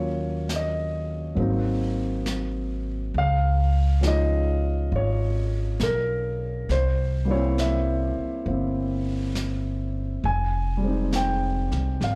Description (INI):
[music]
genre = jazz ballad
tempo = 68 BPM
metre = 4/4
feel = swing 67% on 8ths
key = unclear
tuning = A4 = 441 Hz
[part]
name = dark grand piano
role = accompaniment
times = 0.0-12.2 s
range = F3 to Ab5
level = -29 LUFS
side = equal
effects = none
[part]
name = upright bass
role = bass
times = 0.0-12.2 s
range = F1 to Eb2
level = -27 LUFS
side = equal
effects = none
[part]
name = jazz brush drum kit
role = drums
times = 0.5-12.2 s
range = brushed snare drum, hi-hat, snare drum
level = -38 LUFS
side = equal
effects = none
[sound]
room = light reverb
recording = live gig heard through the venue's PA, club reverb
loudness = -25 LUFS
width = mono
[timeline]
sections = 0.0-12.2 A section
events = none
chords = 0.0 Ebm9; 1.4 Ab9; 3.1 Dbadd9; 6.7 C7; 10.2 Fm9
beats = 0.48 1.37 2.26 | 3.14 4.03 4.91 5.80 | 6.69 7.57 8.46 9.35 | 10.24 11.12 12.01